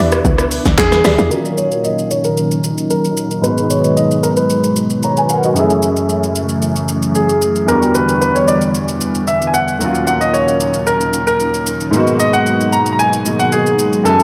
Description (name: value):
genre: amapiano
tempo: 113 BPM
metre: 4/4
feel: straight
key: Eb minor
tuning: A4 = 442 Hz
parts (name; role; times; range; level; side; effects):
- warm grand piano; accompaniment; 0.0-14.2 s; Eb2 to Bb5; -20 LUFS; equal; ensemble chorus, low-pass filter
- string machine, cellos; sustained chords; 0.0-14.2 s; A2 to E4; -21 LUFS; equal; ensemble chorus, low-pass filter
- hollow square pluck; stabs; 0.0-1.3 s; G4 to E5; -23 LUFS; equal; chorus, diffuse ambient delay
- tight log drum bass; bass; 0.0-1.3 s; Db2 to E2; -18 LUFS; equal; none
- deep house drum kit; drums; 0.1-14.2 s; handclaps, hi-hat, kick drum, rim click, shaker, snare drum; -23 LUFS; equal; overdrive
- clear baby grand piano; melody; 0.8-14.2 s; Ab4 to Bb5; -18 LUFS; equal; low-pass filter, diffuse ambient delay
room: wet plate reverb, RT60 1.5 s, digital ambience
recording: dreamy mix soaked in reverb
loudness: -15 LUFS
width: mono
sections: 0.0-1.3 A section; 1.3-14.2 B section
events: drop 0.0-1.3; filter sweep 1.3-14.2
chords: 0.0 Em7; 1.3 Ebm7; 3.4 Abm7; 5.6 Gbm7; 7.7 Em7; 9.8 Ebm7; 11.9 Abm7